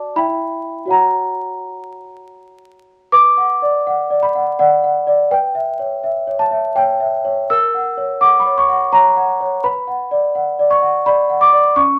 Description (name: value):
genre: classical, lullaby for celesta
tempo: 83 BPM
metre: 3/4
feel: straight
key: B minor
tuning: A4 = 440 Hz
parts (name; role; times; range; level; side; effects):
- celesta; solo; 0.0-12.0 s; C#4 to E6; -16 LUFS; equal; none
room: moderate club reverb, RT60 0.7 s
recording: vinyl crackle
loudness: -15 LUFS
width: mono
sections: 0.0-3.1 A section; 3.1-12.0 B section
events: none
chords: 0.2 Em; 0.9 F#; 3.1 Bm; 5.3 C#m7b5/B; 7.5 F#7/A#; 9.6 Bm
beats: 0.15 | 0.90 1.65 2.39 | 3.13 3.86 4.59 | 5.32 6.03 6.76 | 7.50 8.22 8.94 | 9.64 10.35 11.06 | 11.77